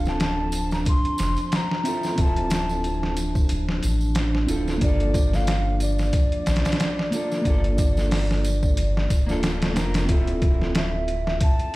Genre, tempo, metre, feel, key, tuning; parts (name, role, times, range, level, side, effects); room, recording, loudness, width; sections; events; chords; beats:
trip hop; 91 BPM; 4/4; swing 56% on 16ths; D minor; A4 = 441 Hz
baroque flute; melody; 0.0-11.8 s; D5 to C6; -30 LUFS; equal; dub echo
mellow electric guitar; accompaniment; 0.0-11.8 s; Bb3 to Bb4; -30 LUFS; equal; harmonic tremolo, tape echo
dark analog pad; sustained chords; 0.0-10.1 s; F3 to D4; -31 LUFS; right 1 dB; lush chorus
soft dub sub bass; bass; 0.0-11.4 s; D1 to Bb1; -25 LUFS; equal; tube saturation
trip hop sampler-style drum kit; drums; 0.1-11.7 s; hi-hat, kick drum, snare drum; -23 LUFS; equal; overdrive, studio reverb
tambourine; percussion; 0.1-10.1 s; -40 LUFS; right 3 dB
digital ambience; played on a big sound system in a bare room, stone room reverb, faint mains hum; -20 LUFS; side -19 dB against mid
0.0-10.1 A section; 10.1-11.8 B section
0.0 Dm9; 4.8 Gm9; 10.1 Dm9
0.20 0.86 1.52 | 2.18 2.84 3.50 4.16 | 4.82 5.48 6.14 6.80 | 7.46 8.12 8.78 9.44 | 10.10 10.75 11.41